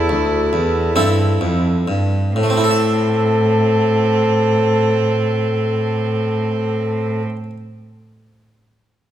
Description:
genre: classical, baroque-style sonata movement with continuo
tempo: 42 BPM (dotted quarters)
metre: 12/8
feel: rubato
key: A minor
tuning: A4 = 440 Hz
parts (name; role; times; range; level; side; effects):
- concert flute; melody; 0.0-7.2 s; A4; -20 LUFS; left 3 dB; none
- rich violin; second line; 0.0-7.2 s; C4 to E4; -24 LUFS; right 7 dB; none
- harpsichord; accompaniment; 0.0-7.6 s; D2 to E5; -21 LUFS; right 1 dB; none
- rich cello; bass; 0.0-7.2 s; D2 to A2; -19 LUFS; right 1 dB; none
room: wet recital hall reverb, RT60 1.6 s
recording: none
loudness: -15 LUFS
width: side -11 dB against mid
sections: 0.0-2.4 A section; 2.4-8.1 B section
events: slowing down 0.0-2.4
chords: 0.0 Am

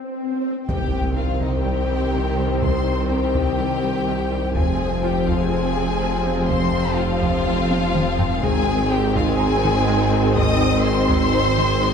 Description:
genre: cinematic, hybrid orchestral and electronic film score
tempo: 124 BPM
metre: 4/4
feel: straight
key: C minor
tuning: A4 = 440 Hz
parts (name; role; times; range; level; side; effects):
- swell and impact; sound effects; 0.0-2.6 s; none; -28 LUFS; equal; none
- warm symphonic violin section; melody; 0.7-11.9 s; Eb5 to Eb6; -27 LUFS; left 3 dB; none
- warm studio violin section; second line; 0.7-11.9 s; Eb4 to Eb5; -27 LUFS; left 4 dB; none
- warm symphonic viola section; accompaniment; 0.7-11.9 s; Eb3 to C4; -27 LUFS; equal; none
- airy breathy pad; sustained chords; 0.7-11.9 s; F3 to C5; -28 LUFS; left 3 dB; none
- dark French horn section; sustained chords; 0.7-11.9 s; C4 to C5; -29 LUFS; left 4 dB; none
- mellow trombone section; sustained chords; 0.7-11.9 s; C3 to Ab3; -31 LUFS; right 2 dB; none
- string-like resonator pluck; arpeggios; 0.7-11.9 s; C3 to Ab4; -32 LUFS; right 1 dB; none
- clear tuba; bass; 0.7-11.9 s; F1 to C2; -28 LUFS; right 3 dB; none
- dark symphonic cello section; bass; 0.7-11.9 s; C2 to Ab2; -28 LUFS; right 3 dB; none
- punchy sub bass; bass; 0.7-11.9 s; F1 to C2; -28 LUFS; equal; none
- rich studio double bass section; bass; 0.7-11.9 s; F1 to C2; -28 LUFS; right 5 dB; none
- taiko ensemble; drums; 0.7-11.8 s; none; -26 LUFS; equal; none
room: wet scoring stage reverb, RT60 1.9 s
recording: dark, warm production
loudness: -18 LUFS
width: side -6 dB against mid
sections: 0.7-11.9 A section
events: break 0.0-0.7; swell 0.0-0.7; impact 0.7-2.6; drum fill 7.7-8.4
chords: 0.0 N.C.; 0.7 Cm; 4.6 Fm; 8.4 Ab

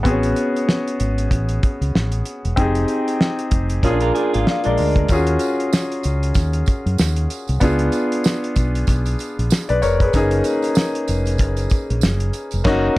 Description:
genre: lush 1970s-style soul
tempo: 95 BPM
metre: 4/4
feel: swing 58% on 16ths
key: F# major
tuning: A4 = 440 Hz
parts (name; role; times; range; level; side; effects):
- clear concert grand piano; accompaniment; 0.0-13.0 s; A#3 to E#5; -20 LUFS; left 1 dB; none
- fingered electric bass; bass; 0.1-12.9 s; E1 to F#2; -20 LUFS; equal; none
- cloth-damped thuddy drum kit; drums; 0.1-12.9 s; crash cymbal, hi-hat, kick drum, snare drum; -19 LUFS; equal; none
- electric guitar through a small old amp; riff; 3.8-5.1 s; G#3 to A#4; -23 LUFS; right 7 dB; none
- tambourine; percussion; 5.1-12.6 s; none; -34 LUFS; right 16 dB; none
room: little or no reverb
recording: dry, close 1970s-style studio recording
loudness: -16 LUFS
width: side -18 dB against mid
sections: 0.0-13.0 A section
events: band accent 12.7-13.0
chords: 0.1 Amaj13; 2.6 Fm9; 3.8 A#7; 5.1 D#m11; 7.6 C#7b9; 10.1 F#6

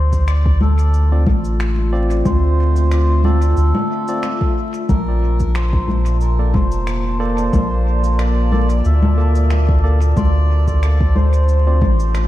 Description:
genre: ambient dub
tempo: 91 BPM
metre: 4/4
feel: swing 54% on 16ths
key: D minor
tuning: A4 = 440 Hz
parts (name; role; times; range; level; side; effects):
- melodica; melody; 0.0-12.3 s; A4 to E5; -26 LUFS; right 1 dB; dub echo
- warbly tape-like pad; sustained chords; 0.3-12.3 s; Bb2 to A5; -25 LUFS; left 1 dB; chorus, built-in reverb
- soft dub sub bass; bass; 0.0-12.3 s; F1 to D2; -14 LUFS; equal; none
- electronic kick drum; drums; 0.1-12.0 s; none; -19 LUFS; equal; overdrive
- electronic shaker, finger snaps and congas; drums; 0.1-12.3 s; none; -25 LUFS; left 3 dB; dub echo
- barky tine electric piano; stabs; 1.1-11.8 s; Bb3 to D5; -27 LUFS; right 1 dB; dub echo
- soft synth bell; arpeggios; 10.2-12.3 s; C5 to C6; -30 LUFS; left 3 dB; chorus, dub echo
room: light reverb, digital ambience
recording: vinyl crackle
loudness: -13 LUFS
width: side -14 dB against mid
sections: 0.0-12.3 A section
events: none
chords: 0.0 Dm7; 4.9 Bbmaj7; 10.2 Dm7

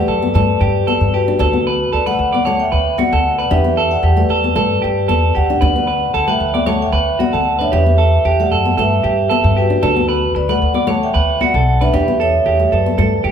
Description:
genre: highlife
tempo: 114 BPM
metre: 4/4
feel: straight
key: D major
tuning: A4 = 440 Hz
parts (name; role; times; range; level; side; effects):
- vibraphone with soft mallets; melody; 0.0-13.2 s; F#4 to A5; -18 LUFS; left 1 dB; none
- nylon-string guitar; accompaniment; 0.0-13.2 s; A3 to D4; -22 LUFS; left 3 dB; none
- clean electric guitar; arpeggios; 0.0-13.3 s; F#4 to D5; -18 LUFS; right 5 dB; none
- upright bass; bass; 0.0-13.3 s; B1 to G2; -18 LUFS; equal; none
room: wet large studio reverb, RT60 1.4 s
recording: band playing live in one room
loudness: -13 LUFS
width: side -8 dB against mid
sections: 0.0-13.3 A section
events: none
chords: 0.4 G; 1.4 D6; 3.5 Em7; 4.6 G6; 5.6 D6; 7.7 Em7; 8.8 G6; 9.8 D6; 11.9 Em7

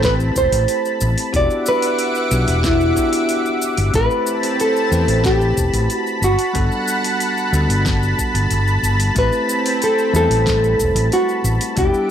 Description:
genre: sunset chillout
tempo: 92 BPM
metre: 4/4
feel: straight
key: A dorian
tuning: A4 = 440 Hz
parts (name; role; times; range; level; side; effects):
- nylon-string guitar; melody; 0.0-12.1 s; E4 to D5; -19 LUFS; equal; tape echo
- bell-like tine electric piano; accompaniment; 0.0-12.1 s; G3 to B4; -24 LUFS; moving between left 4 dB and right 3 dB; auto-pan, tape echo
- lush unison pad; sustained chords; 0.0-12.1 s; C4 to D6; -22 LUFS; equal; chorus
- mellow fretless electric bass; bass; 0.0-11.9 s; E1 to E2; -18 LUFS; equal; tube saturation
- electronic kick drum; drums; 0.0-11.9 s; none; -23 LUFS; equal; small room ambience
- smooth R&B drum kit; drums; 0.0-12.1 s; hi-hat, shaker, snare drum; -26 LUFS; left 1 dB; small room ambience
room: digital ambience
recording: dry, gritty hardware recording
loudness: -15 LUFS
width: side -9 dB against mid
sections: 0.0-12.1 A section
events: none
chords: 0.0 Am9; 1.3 Em9; 3.9 Am9; 6.2 Gmaj9; 9.2 Am9

